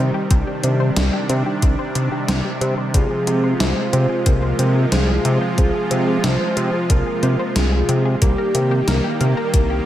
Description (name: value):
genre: synthwave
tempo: 91 BPM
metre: 4/4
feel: straight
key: unclear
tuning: A4 = 440 Hz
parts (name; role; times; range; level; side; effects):
- soft supersaw; sustained chords; 0.0-9.9 s; C3 to G4; -22 LUFS; right 1 dB; sidechain pumping
- analog pluck; arpeggios; 0.0-9.8 s; Bb3 to C5; -28 LUFS; left 1 dB; chorus, analog delay
- fat analog bass; bass; 0.0-9.8 s; C2 to C3; -19 LUFS; equal; sidechain pumping
- electronic kick drum; drums; 0.3-9.7 s; none; -17 LUFS; equal; overdrive
- gated 80s digital drum machine; drums; 0.3-9.7 s; hi-hat, snare drum; -23 LUFS; equal; gated reverb, gated reverb snare, overdrive
- soft octave-layered synth lead; melody; 2.9-9.9 s; G4 to C5; -24 LUFS; equal; chorus, analog delay
room: moderate plate reverb, RT60 1.9 s, digital ambience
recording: dreamy mix soaked in reverb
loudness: -16 LUFS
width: side -12 dB against mid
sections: 0.0-9.9 A section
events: none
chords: 0.0 Cm; 2.9 Fm/C; 8.2 Eb/C